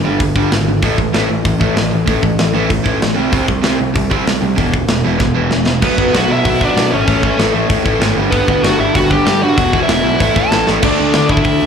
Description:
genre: punk rock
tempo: 192 BPM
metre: 4/4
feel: straight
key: unclear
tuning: A4 = 440 Hz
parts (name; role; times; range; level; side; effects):
- overdriven electric guitar; riff; 0.0-11.7 s; E2 to D4; -18 LUFS; right 13 dB; slapback echo
- overdriven semi-hollow guitar; riff; 0.0-11.7 s; E2 to D4; -19 LUFS; left 14 dB; slapback echo
- fuzz picked electric bass; bass; 0.0-11.7 s; E1 to D3; -19 LUFS; equal; overdrive
- tight metal drum kit; drums; 0.2-11.5 s; crash cymbal, hi-hat, kick drum, snare drum; -17 LUFS; equal; none
- high-gain lead guitar; melody; 5.8-11.7 s; B3 to A5; -16 LUFS; left 1 dB; distortion, slapback echo
- thick fuzz guitar; riff; 10.8-11.7 s; D3 to D4; -19 LUFS; left 2 dB; distortion, slapback echo
room: little or no reverb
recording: live gig heard through the venue's PA, club ambience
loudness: -11 LUFS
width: side -7 dB against mid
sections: 0.0-5.8 A section; 5.8-10.8 B section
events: drum fill 5.2-5.8, 10.7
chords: 0.0 G5; 0.8 A5; 3.2 C5; 4.6 E5; 5.8 Bm; 6.9 A; 8.2 G; 9.6 E5; 10.2 A5; 10.8 D5

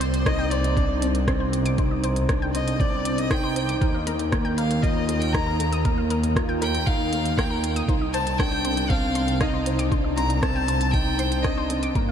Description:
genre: piano and strings electronica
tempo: 118 BPM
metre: 4/4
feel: straight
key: C dorian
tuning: A4 = 440 Hz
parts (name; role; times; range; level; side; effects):
- warm violin; melody; 0.0-11.8 s; C5 to Bb5; -28 LUFS; equal; tape echo
- analog pluck; arpeggios; 0.0-12.1 s; Bb4 to Eb6; -36 LUFS; left 3 dB; chorus, cassette tape, sidechain pumping, tape echo
- felt-muted upright piano; riff; 0.0-12.1 s; Bb3 to C5; -26 LUFS; equal; ensemble chorus, tape echo
- rich studio double bass section; bass; 0.0-12.1 s; G1 to Eb2; -26 LUFS; equal; sidechain pumping
- organic electronic drum kit; drums; 0.0-12.1 s; hi-hat, rim click; -33 LUFS; equal; none
- electronic kick drum; drums; 0.3-12.1 s; none; -24 LUFS; equal; none
room: moderate huge ambient reverb, RT60 7.6 s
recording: dreamy mix soaked in reverb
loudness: -21 LUFS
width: side -8 dB against mid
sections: 0.0-12.1 A section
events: none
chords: 0.0 Cmadd9; 3.8 Ebsus2; 7.9 Cmadd9

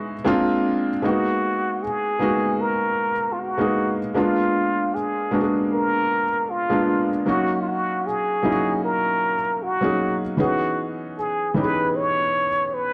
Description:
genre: hip hop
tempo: 77 BPM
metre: 4/4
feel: swing 55% on 16ths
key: G# minor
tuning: A4 = 441 Hz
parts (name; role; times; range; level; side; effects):
- trumpet with plunger mute; melody; 0.0-12.9 s; E#4 to C#5; -25 LUFS; equal; plate reverb
- felt-muted upright piano; accompaniment; 0.0-12.9 s; E3 to G#4; -25 LUFS; equal; none
room: wet studio reverb, RT60 0.5 s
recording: dark, warm production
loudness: -22 LUFS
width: mono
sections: 0.0-1.0 A section; 1.0-12.9 B section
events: none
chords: 0.3 A#7; 1.0 G#m9; 4.2 A#7b9; 7.3 D#m7; 10.4 C#m9

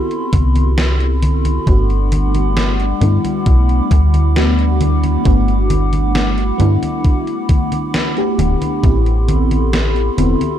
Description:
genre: vaporwave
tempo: 67 BPM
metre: 4/4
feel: straight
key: G major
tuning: A4 = 444 Hz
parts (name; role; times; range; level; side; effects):
- FM electric piano with soft pad layer; accompaniment; 0.0-10.6 s; A3 to G4; -19 LUFS; equal; tremolo, analog chorus, analog delay
- warbly tape-like pad; sustained chords; 0.0-10.6 s; G3 to D6; -23 LUFS; right 1 dB; chorus, built-in reverb, vintage 12-bit sampler grit
- gated 80s digital drum machine; drums; 0.1-10.6 s; congas, hi-hat, snare drum; -21 LUFS; left 1 dB; gated reverb, gated reverb snare
- slap-like FM bass; bass; 0.3-10.4 s; D1 to G2; -14 LUFS; equal; tube saturation
- electronic kick drum; drums; 0.3-9.0 s; none; -14 LUFS; equal; none
room: digital ambience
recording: dark, warm production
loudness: -12 LUFS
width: side -10 dB against mid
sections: 0.0-10.6 A section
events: none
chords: 0.0 Am9; 1.7 Gmaj7; 8.8 Am9

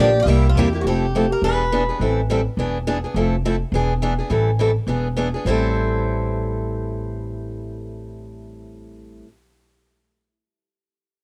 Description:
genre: acoustic string swing (jazz manouche)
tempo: 209 BPM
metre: 4/4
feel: swing 57% on 8ths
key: A minor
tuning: A4 = 438 Hz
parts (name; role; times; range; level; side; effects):
- picked steel-string acoustic guitar; melody; 0.0-0.7 s; D5 to E5; -23 LUFS; equal; none
- picked swing-style acoustic guitar; second line; 0.0-2.0, 5.5-9.2 s; E4 to C5; -27 LUFS; equal; none
- picked steel-string acoustic guitar; accompaniment; 0.0-9.3 s; A2 to A4; -25 LUFS; equal; none
- upright bass; bass; 0.0-9.2 s; E1 to E2; -24 LUFS; equal; none
room: small room ambience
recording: dry, close 1970s-style studio recording, faint mains hum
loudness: -20 LUFS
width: mono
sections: 0.8-5.5 A section; 5.5-7.8 B section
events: none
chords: 0.3 C7; 0.8 Fmaj9; 1.4 E7; 2.0 Am7; 2.6 E7; 3.2 Fmaj7; 3.7 E7; 4.3 Am7; 4.9 E7; 5.5 Am7

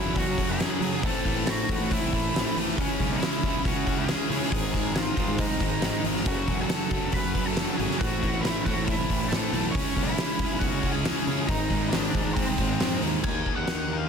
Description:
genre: quiet-loud alternative rock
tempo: 138 BPM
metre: 4/4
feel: straight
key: F# minor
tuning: A4 = 441 Hz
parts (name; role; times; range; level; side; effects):
- octave-fuzz lead guitar; melody; 0.0-14.1 s; B#3 to B5; -32 LUFS; equal; distortion, slapback echo
- fingerpicked acoustic archtop guitar; arpeggios; 0.0-14.1 s; G#2 to F#4; -35 LUFS; left 7 dB; none
- thick fuzz guitar; riff; 0.0-13.2 s; F#2 to C#4; -30 LUFS; right 12 dB; distortion
- tight distorted guitar; riff; 0.0-14.1 s; F#2 to D#4; -33 LUFS; left 14 dB; distortion
- fuzz fingered electric bass; bass; 0.0-14.1 s; E1 to F#3; -32 LUFS; equal; overdrive
- oversized low-tuned drum kit; drums; 0.2-13.8 s; crash cymbal, hi-hat, kick drum, snare drum; -28 LUFS; equal; none
room: small room ambience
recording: dense, heavily limited modern master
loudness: -24 LUFS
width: side -6 dB against mid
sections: 0.0-13.2 A section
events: none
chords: 0.0 F#m; 1.0 Am; 2.8 C#m; 4.5 G#; 6.3 F#m; 8.0 Am; 9.7 C#m; 11.5 G#; 13.2 D#m

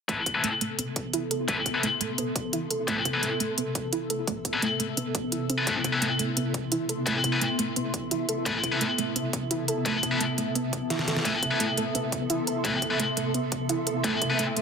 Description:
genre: dark technical drum and bass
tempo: 172 BPM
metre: 4/4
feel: straight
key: A minor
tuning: A4 = 440 Hz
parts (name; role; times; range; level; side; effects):
- swarming drone; sustained chords; 0.3-14.6 s; C3 to A4; -31 LUFS; left 1 dB; built-in reverb, sidechain pumping
- soft round pluck; arpeggios; 0.1-14.6 s; A3 to A4; -32 LUFS; right 2 dB; analog chorus, sidechain pumping, ping-pong delay
- heavy high-gain guitar; stabs; 0.1-14.4 s; C4 to B4; -29 LUFS; left 3 dB; distortion, low-pass filter, ping-pong delay
- dubstep drum kit; drums; 0.1-14.6 s; hi-hat, snare drum; -29 LUFS; right 1 dB; none
- electronic kick drum; drums; 0.1-14.3 s; none; -36 LUFS; equal; high-pass filter on kick
- ethereal airy pad; texture; 0.9-14.6 s; A4 to E6; -37 LUFS; right 3 dB; ensemble chorus, built-in reverb, sidechain pumping
room: moderate digital room reverb, RT60 1.0 s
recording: dense, heavily limited modern master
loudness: -25 LUFS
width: side -6 dB against mid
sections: 0.1-14.6 A section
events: fade-in on ambient pad 0.1-14.6; filter sweep on synth pluck 0.1-14.6; drum fill 10.9-11.3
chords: 0.1 Amadd9

